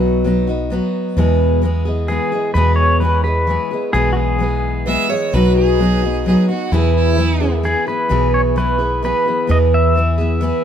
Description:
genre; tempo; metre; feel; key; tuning
honky-tonk and classic country; 130 BPM; 3/4; straight; E major; A4 = 438 Hz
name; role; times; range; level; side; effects
picked steel-string acoustic guitar; accompaniment; 0.0-10.6 s; E2 to G#4; -17 LUFS; left 1 dB; none
deep dub fingered electric bass; bass; 0.0-10.5 s; B1 to E2; -17 LUFS; equal; none
pedal steel guitar; melody; 2.1-5.1, 7.7-10.6 s; F#4 to E5; -19 LUFS; left 1 dB; none
clear fiddle; second line; 4.9-7.5 s; E4 to E5; -22 LUFS; right 6 dB; none
room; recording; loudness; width
light reverb; none; -14 LUFS; side -8 dB against mid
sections
0.0-2.6 A section; 2.6-10.6 A section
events
none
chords
0.0 B; 1.2 E; 5.3 B; 6.7 E

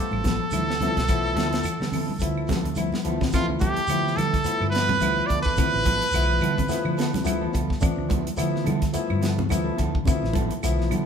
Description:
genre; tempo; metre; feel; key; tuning
afrobeat; 107 BPM; 4/4; swing 56% on 16ths; D dorian; A4 = 440 Hz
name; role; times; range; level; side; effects
brilliant trumpet; melody; 0.0-7.5 s; F4 to D5; -26 LUFS; right 2 dB; none
barky tine electric piano; accompaniment; 0.0-10.9 s; F3 to F4; -30 LUFS; left 5 dB; overdrive
electric guitar at the edge of break-up; arpeggios; 0.0-11.0 s; D3 to G3; -33 LUFS; left 5 dB; none
hollow-body short-scale fingered electric bass; bass; 0.1-11.1 s; A1 to D3; -28 LUFS; right 2 dB; none
claves; percussion; 0.1-11.1 s; none; -41 LUFS; right 4 dB; none
congas; percussion; 0.1-11.1 s; none; -30 LUFS; equal; none
tight funk drum kit; drums; 0.2-11.1 s; hi-hat, kick drum, snare drum; -27 LUFS; equal; none
shekere; percussion; 0.2-11.1 s; none; -36 LUFS; right 3 dB; none
mellow electric guitar; stabs; 0.3-11.1 s; F3 to A4; -33 LUFS; right 2 dB; none
room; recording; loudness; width
wet large studio reverb, RT60 1.1 s; band playing live in one room; -21 LUFS; side -7 dB against mid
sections
0.0-3.3 A section; 3.3-11.1 B section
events
drum fill 2.8-3.3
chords
0.0 Dm69

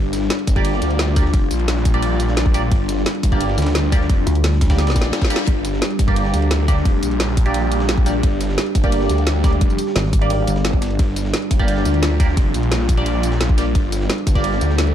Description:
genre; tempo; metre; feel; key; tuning
dark technical drum and bass; 174 BPM; 4/4; straight; G minor; A4 = 440 Hz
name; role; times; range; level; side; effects
dark analog pad; sustained chords; 0.0-14.9 s; G3 to G4; -24 LUFS; left 1 dB; chorus, phaser, sidechain pumping
snarling distorted saw bass; bass; 0.0-14.9 s; F1 to D2; -20 LUFS; equal; distortion, overdrive
breakbeat sampler-style drum kit; drums; 0.1-14.9 s; ride cymbal, snare drum; -34 LUFS; equal; none
drum and bass drum kit; drums; 0.1-14.9 s; hi-hat, snare drum, tambourine; -24 LUFS; equal; none
electronic kick drum; drums; 0.5-14.4 s; none; -17 LUFS; equal; none
band-passed chord stab; stabs; 0.6-14.9 s; Bb3 to D5; -26 LUFS; right 2 dB; phaser, dub echo
pulsing pluck wobble bass; bass; 4.3-5.1, 10.0-11.0 s; G1 to D2; -18 LUFS; equal; chorus, tube saturation
reverse cymbal; sound effects; 4.9-5.5 s; none; -32 LUFS; left 7 dB; none
room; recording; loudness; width
light reverb; dark, warm production; -15 LUFS; side -10 dB against mid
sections
0.0-14.9 A section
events
drum fill 4.8-5.5; reverse cymbal 4.9-5.5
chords
0.0 Gm

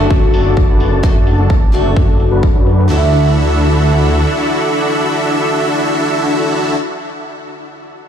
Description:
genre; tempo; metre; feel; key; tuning
EDM, festival progressive house; 129 BPM; 4/4; straight; D major; A4 = 440 Hz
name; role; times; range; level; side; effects
picked acoustic archtop guitar; accompaniment; 0.0-6.8 s; D3 to F#4; -21 LUFS; left 3 dB; sidechain pumping, tape echo
dark studio string section; sustained chords; 0.0-6.8 s; E4 to A5; -24 LUFS; right 1 dB; sidechain pumping, low-pass filter
dense compressed supersaw; riff; 0.0-6.8 s; D4 to E5; -16 LUFS; equal; sidechain pumping, low-pass filter, tape echo
detuned saw bass; bass; 0.0-4.3 s; F#1 to F#2; -13 LUFS; equal; sidechain pumping
electronic kick drum; drums; 0.1-2.5 s; none; -12 LUFS; equal; none
electronic hi-hat; drums; 0.3-2.8 s; none; -38 LUFS; left 1 dB; low-pass filter on cymbals, low-pass filter on hats
room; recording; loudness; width
light reverb; played on a big sound system in a bare room, stone room reverb; -10 LUFS; side -8 dB against mid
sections
0.0-2.9 A section; 2.9-6.6 B section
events
filter sweep on supersaw synth 0.0-2.9; filter sweep on string section 0.0-2.9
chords
0.0 D/F#; 2.9 Dadd9

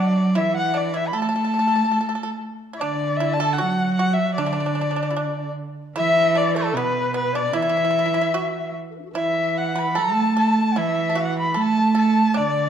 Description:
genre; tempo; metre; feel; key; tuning
chinese traditional, Chinese chamber ensemble; 75 BPM; 2/4; rubato; A zhi mode; A4 = 440 Hz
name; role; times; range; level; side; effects
rich erhu; melody; 0.0-12.7 s; A4 to B5; -23 LUFS; left 2 dB; none
large dizi; second line; 0.0-12.7 s; D4 to A5; -27 LUFS; left 6 dB; none
pipa; second line; 0.0-12.7 s; A3 to B4; -29 LUFS; right 5 dB; none
rich cello; second line; 0.0-12.7 s; B2 to A3; -23 LUFS; right 4 dB; none
room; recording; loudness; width
wet recital hall reverb, RT60 1.4 s; dark, warm production; -19 LUFS; side -8 dB against mid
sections
0.0-2.8 A section; 2.8-12.7 B section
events
none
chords
none

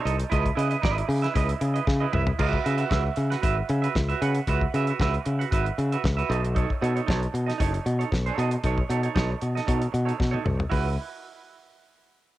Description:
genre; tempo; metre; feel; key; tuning
disco; 115 BPM; 4/4; straight; C# minor; A4 = 441 Hz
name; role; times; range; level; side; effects
clean electric guitar; accompaniment; 0.0-10.9 s; D#4 to F#5; -29 LUFS; right 7 dB; cassette tape
fingered electric bass; bass; 0.1-11.0 s; F#1 to C#3; -25 LUFS; left 1 dB; none
damped 70s drum kit; drums; 0.1-10.8 s; crash cymbal, hi-hat, kick drum, snare drum, toms; -28 LUFS; left 1 dB; cassette tape
room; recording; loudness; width
little or no reverb; home recording on cassette; -22 LUFS; side -15 dB against mid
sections
0.0-2.4 A section; 2.4-10.7 B section; 10.7-12.4 C section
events
drum fill 1.9-2.4, 10.2-10.7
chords
0.3 C#m9; 2.4 C#m7; 6.3 B9; 10.7 C#m7

